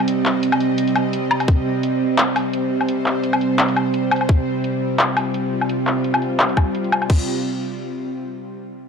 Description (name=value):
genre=half-time drum and bass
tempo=171 BPM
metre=4/4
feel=swing 54% on 16ths, half-time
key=C minor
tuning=A4 = 439 Hz
part: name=bowed-like drone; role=sustained chords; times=0.0-7.3 s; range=C3 to Eb5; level=-20 LUFS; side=right 1 dB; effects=built-in reverb, sidechain pumping
part: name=drum and bass drum kit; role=drums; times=0.0-7.2 s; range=crash cymbal, handclaps, hi-hat, woodblock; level=-20 LUFS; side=left 2 dB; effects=overdrive, low-pass filter on hats, low-pass filter on snare, low-pass filter on perc, low-pass filter on cymbals
part: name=electronic kick drum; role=drums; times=1.5-1.6, 4.3-4.4, 6.6-7.2 s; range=none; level=-15 LUFS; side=left 1 dB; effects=overdrive
room=light reverb, digital ambience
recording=dry, gritty hardware recording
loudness=-17 LUFS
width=side -6 dB against mid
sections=0.0-7.1 A section; 7.1-8.5 B section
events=filter sweep on drum 0.0-7.1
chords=0.0 C5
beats=| 0.08 0.43 0.78 1.13 | 1.48 1.83 2.19 2.54 | 2.89 3.24 3.59 3.94 | 4.29 4.64 4.99 5.34 | 5.69 6.04 6.39 6.75 | 7.10